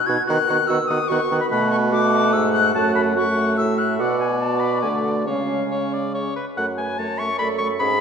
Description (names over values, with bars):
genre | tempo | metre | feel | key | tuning
quick classical-period movement for wind quintet | 145 BPM | 3/4 | straight | F# minor | A4 = 440 Hz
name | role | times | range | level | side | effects
concert flute | melody | 0.0-8.0 s | A4 to G#6 | -24 LUFS | left 6 dB | none
warm oboe | second line | 0.1-8.0 s | B4 to C#6 | -25 LUFS | left 2 dB | none
clear clarinet | accompaniment | 0.1-8.0 s | C#4 to C#5 | -26 LUFS | right 5 dB | none
mellow French horn | accompaniment | 0.1-7.9 s | G#3 to D#4 | -25 LUFS | right 1 dB | none
warm bassoon | bass | 0.1-8.0 s | F#2 to D#3 | -24 LUFS | right 1 dB | none
room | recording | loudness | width
wet concert hall reverb, RT60 1.8 s | heard from further back in the room, nothing above 10.5 kHz | -18 LUFS | side -6 dB against mid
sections
0.0-6.6 A section; 6.6-8.0 B section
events
none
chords
0.3 B/D#; 1.5 Bm7; 2.7 F#m; 4.0 Bm; 5.3 C#; 6.6 F#m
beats
| 0.28 0.69 1.10 | 1.51 1.92 2.33 | 2.74 3.16 3.58 | 3.99 4.41 4.83 | 5.26 5.70 6.13 | 6.57 6.98 7.39 | 7.80